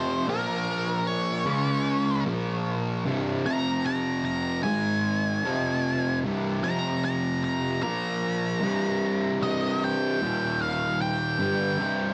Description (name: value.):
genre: metal.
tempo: 76 BPM.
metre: 4/4.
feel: straight.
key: C minor.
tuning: A4 = 441 Hz.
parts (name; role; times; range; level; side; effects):
octave-fuzz lead guitar; melody; 0.0-12.1 s; Bb4 to Bb5; -32 LUFS; equal; wah, distortion, analog delay.
fuzz guitar; riff; 0.0-12.1 s; C2 to Db4; -28 LUFS; equal; distortion.
room: moderate large studio reverb, RT60 1.1 s.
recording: dark, warm production.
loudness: -27 LUFS.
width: mono.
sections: 0.0-9.4 A section; 9.4-12.1 B section.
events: lead electric guitar solo 0.0-9.4.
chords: 0.3 Bb5; 1.5 Db5; 2.3 Bb5; 3.1 C5; 3.5 F5; 4.6 Ab5; 5.4 F5; 6.2 C5; 6.6 F5; 7.8 Bb5; 8.6 C5; 10.2 Eb5; 11.4 C5.